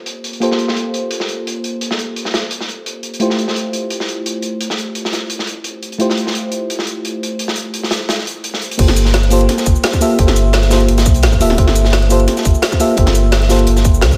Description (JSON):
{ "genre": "liquid drum and bass", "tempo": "172 BPM", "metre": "4/4", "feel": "swing 53% on 16ths", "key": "G dorian", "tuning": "A4 = 440 Hz", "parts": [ { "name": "mellow FM electric piano", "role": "accompaniment", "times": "0.0-14.2 s", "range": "A3 to E5", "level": "-20 LUFS", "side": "equal", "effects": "chorus, cassette tape, low-pass filter, analog delay" }, { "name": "crunchy breakbeat drum kit", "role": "drums", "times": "0.1-14.1 s", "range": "hi-hat, snare drum", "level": "-24 LUFS", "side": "equal", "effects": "high-pass filter on hats, low-pass filter on hats, high-pass filter on snare, low-pass filter on snare, high-pass filter on room, low-pass filter on room" }, { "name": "sub bass with octave", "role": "bass", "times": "8.8-14.1 s", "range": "D1 to D2", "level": "-16 LUFS", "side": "equal", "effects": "none" }, { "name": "drum and bass drum kit", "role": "drums", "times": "8.8-14.2 s", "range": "crash cymbal, hi-hat, shaker, snare drum", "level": "-22 LUFS", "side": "equal", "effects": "low-pass filter on snare, low-pass filter on hats, low-pass filter on cymbals, low-pass filter on perc, low-pass filter on room" }, { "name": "electronic kick drum", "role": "drums", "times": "8.8-14.2 s", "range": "none", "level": "-16 LUFS", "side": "equal", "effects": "none" } ], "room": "light reverb, digital ambience", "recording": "none", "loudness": "-15 LUFS", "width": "mono", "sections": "0.0-8.8 A section; 8.8-14.2 B section", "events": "filter sweep on FM electric piano 0.0-8.8; drop 8.8-14.2", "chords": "0.0 Gm11; 3.2 Fmaj9; 8.8 Gm11" }